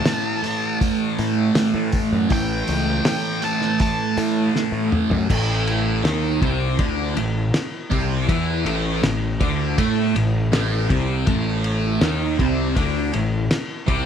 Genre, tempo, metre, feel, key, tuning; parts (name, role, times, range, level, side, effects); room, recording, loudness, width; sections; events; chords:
psychedelic rock; 80 BPM; 4/4; straight; A4 = 439 Hz
octave-fuzz lead guitar; melody; 0.0-4.2 s; G5 to A5; -27 LUFS; equal; distortion, tape echo
thick fuzz guitar; riff; 0.0-14.1 s; A2 to A4; -21 LUFS; right 1 dB; distortion, phaser
cloth-damped thuddy drum kit; drums; 0.1-14.1 s; crash cymbal, hi-hat, kick drum, ride cymbal, snare drum, toms; -24 LUFS; equal
fuzz picked electric bass; bass; 1.2-14.1 s; A1 to A2; -24 LUFS; equal; overdrive
light reverb, small room ambience; -18 LUFS; side -8 dB against mid
0.0-5.3 A section; 5.3-14.1 B section
lead electric guitar solo 0.0-5.3; drum fill 4.6-5.3
0.0 A5